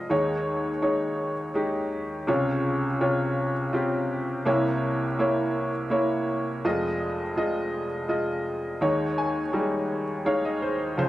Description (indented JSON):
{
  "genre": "folk",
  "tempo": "83 BPM",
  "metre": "3/4",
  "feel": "straight",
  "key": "unclear",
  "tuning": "A4 = 440 Hz",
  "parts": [
    { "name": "bright upright piano", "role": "solo", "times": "0.0-11.1 s", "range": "F1 to Ab5", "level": "-24 LUFS", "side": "equal", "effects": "slapback echo" }
  ],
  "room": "moderate studio reverb, RT60 0.6 s",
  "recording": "none",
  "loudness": "-24 LUFS",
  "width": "side -15 dB against mid",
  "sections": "0.0-11.1 A section",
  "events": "none",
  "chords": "0.1 Eb7sus4; 2.3 Dbmaj7; 4.5 C7b9; 6.6 Fm7; 8.8 Eb7sus4",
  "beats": "| 0.11 0.84 1.56 | 2.29 3.01 3.74 | 4.47 5.19 5.92 | 6.64 7.37 8.10 | 8.82 9.55 10.27 | 11.00"
}